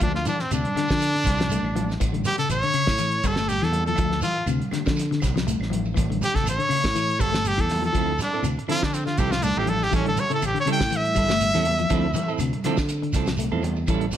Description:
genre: afrobeat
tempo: 121 BPM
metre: 4/4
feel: swing 55% on 16ths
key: D minor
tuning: A4 = 440 Hz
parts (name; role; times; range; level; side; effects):
- brilliant trumpet; melody; 0.0-12.4 s; C4 to G5; -24 LUFS; equal; none
- electric guitar at the edge of break-up; arpeggios; 0.0-14.0 s; C3 to A3; -28 LUFS; left 7 dB; phaser
- fingered electric bass; bass; 0.0-14.1 s; G1 to D3; -28 LUFS; right 1 dB; none
- cloth-damped thuddy drum kit; drums; 0.0-14.2 s; hi-hat, kick drum, snare drum; -28 LUFS; equal; none
- claves; percussion; 0.0-14.0 s; none; -44 LUFS; equal; none
- congas; percussion; 0.0-14.2 s; none; -33 LUFS; right 3 dB; none
- shekere; percussion; 0.0-14.2 s; none; -34 LUFS; right 4 dB; none
- semi-hollow electric guitar; stabs; 8.0-14.2 s; F3 to A4; -29 LUFS; right 8 dB; vibrato effect
room: light reverb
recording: none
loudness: -21 LUFS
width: side -10 dB against mid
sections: 0.0-14.2 A section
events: trumpet solo 0.0-14.2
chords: 0.0 Dm7; 2.0 A7; 4.0 Dm7; 6.0 A7; 8.0 Dm9; 9.9 A7; 11.9 Dm9

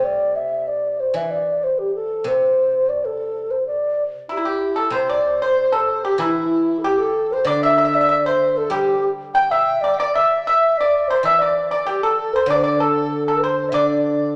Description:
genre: chinese traditional, Chinese chamber ensemble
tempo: 95 BPM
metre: 2/4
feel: rubato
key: D shang mode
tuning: A4 = 440 Hz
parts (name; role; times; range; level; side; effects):
- mellow low xiao; melody; 0.0-14.3 s; E4 to G5; -22 LUFS; equal; none
- guzheng; accompaniment; 0.0-14.4 s; C3 to G3; -30 LUFS; equal; none
- large dizi; second line; 4.3-14.4 s; E4 to G5; -28 LUFS; equal; none
- pipa; second line; 4.3-14.3 s; E4 to G5; -22 LUFS; equal; none
room: moderate recital hall reverb, RT60 1.6 s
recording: none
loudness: -19 LUFS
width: mono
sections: 0.0-4.9 A section; 4.9-14.4 B section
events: none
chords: none

